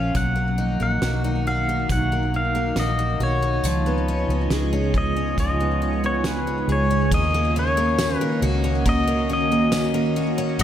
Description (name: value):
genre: dream pop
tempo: 69 BPM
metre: 4/4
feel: straight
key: Eb minor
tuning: A4 = 438 Hz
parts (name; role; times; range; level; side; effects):
- pedal steel guitar; melody; 0.0-10.6 s; Cb5 to F#5; -25 LUFS; left 2 dB; digital delay
- ethereal airy pad; sustained chords; 0.0-10.6 s; Db3 to Gb4; -26 LUFS; right 2 dB; ensemble chorus, built-in reverb
- picked twelve-string acoustic guitar; arpeggios; 0.0-10.6 s; F3 to Ab4; -26 LUFS; left 2 dB; lush chorus, digital delay
- vintage muted fingered electric bass; bass; 0.0-10.6 s; Ab1 to Eb2; -25 LUFS; equal; none
- loose indie drum kit; drums; 0.1-10.6 s; hi-hat, kick drum, ride cymbal, snare drum, tambourine; -28 LUFS; right 1 dB; none
- drifting glass-harmonics texture; texture; 4.0-10.6 s; Db5 to Ab5; -38 LUFS; right 4 dB; chorus, built-in reverb, digital delay
room: light reverb, small room reverb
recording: none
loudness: -19 LUFS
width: side -10 dB against mid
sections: 0.0-7.1 A section; 7.1-10.6 B section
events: none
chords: 0.2 Bmaj7; 3.6 Db7; 7.1 Ebm7